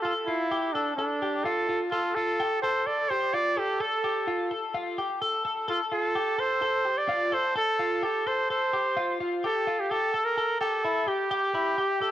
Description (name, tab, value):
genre	indie pop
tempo	128 BPM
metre	4/4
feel	straight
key	F major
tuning	A4 = 440 Hz
part	clear trumpet	melody	0.0-12.1 s	D4 to D5	-26 LUFS	right 2 dB	cassette tape
part	twelve-string electric guitar	arpeggios	0.0-12.1 s	E4 to A4	-29 LUFS	left 3 dB	cassette tape
room	moderate lush hall reverb, RT60 2.5 s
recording	home recording on cassette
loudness	-25 LUFS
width	side -12 dB against mid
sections	0.0-12.1 A section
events	none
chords	0.0 F; 9.4 Emadd11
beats	| 0.05 0.52 0.99 1.46 | 1.93 2.40 2.87 3.34 | 3.81 4.28 4.75 5.22 | 5.69 6.16 6.63 7.10 | 7.57 8.04 8.51 8.97 | 9.44 9.91 10.38 10.85 | 11.32 11.78